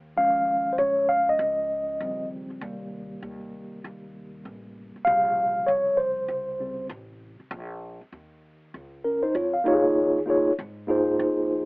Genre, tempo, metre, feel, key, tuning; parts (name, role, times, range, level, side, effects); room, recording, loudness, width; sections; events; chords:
hip hop, jazz-hop; 98 BPM; 4/4; swing 63% on 16ths; Bb dorian; A4 = 440 Hz
upright bass; bass; 0.0-11.7 s; A1 to Ab2; -42 LUFS; equal
mellow tine electric piano; accompaniment; 0.2-11.7 s; C3 to F5; -22 LUFS; equal; medium stereo tremolo
moderate studio reverb, RT60 0.5 s; telephone sound; -22 LUFS; side -25 dB against mid
0.0-7.5 A section; 7.5-11.7 B section
tine electric piano solo 0.0-7.5
0.0 Eb9sus4; 2.0 Eb13; 2.6 Eb6; 5.1 Bbm69; 7.5 Bbm; 9.7 Eb9sus4